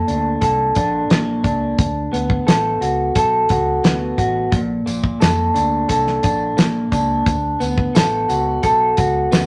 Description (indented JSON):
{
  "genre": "indie pop, bedroom pop",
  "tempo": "88 BPM",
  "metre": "4/4",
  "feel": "straight",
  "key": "unclear",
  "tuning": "A4 = 440 Hz",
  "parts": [
    { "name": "electric guitar through a small old amp", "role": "accompaniment", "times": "0.0-9.5 s", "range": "Bb2 to A4", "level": "-20 LUFS", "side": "equal", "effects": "warbly pitch drift" },
    { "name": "vintage muted fingered electric bass", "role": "bass", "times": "0.1-9.5 s", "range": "A1 to F2", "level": "-27 LUFS", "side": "equal", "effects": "none" },
    { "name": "damped 70s drum kit", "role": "drums", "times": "0.1-9.5 s", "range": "hi-hat, kick drum, snare drum", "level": "-19 LUFS", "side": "equal", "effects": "none" },
    { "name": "tambourine", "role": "percussion", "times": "4.9-9.5 s", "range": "none", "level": "-40 LUFS", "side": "equal", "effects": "none" }
  ],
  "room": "wet studio reverb, RT60 0.6 s",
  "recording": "none",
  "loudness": "-18 LUFS",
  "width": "mono",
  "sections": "0.0-9.5 A section",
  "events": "none",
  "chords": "0.0 Bbmaj7; 1.8 D6; 4.5 Bbmaj7; 7.3 D6",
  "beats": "0.42 1.10 | 1.79 2.47 3.16 3.84 | 4.53 5.21 5.89 6.58 | 7.26 7.95 8.63 9.32"
}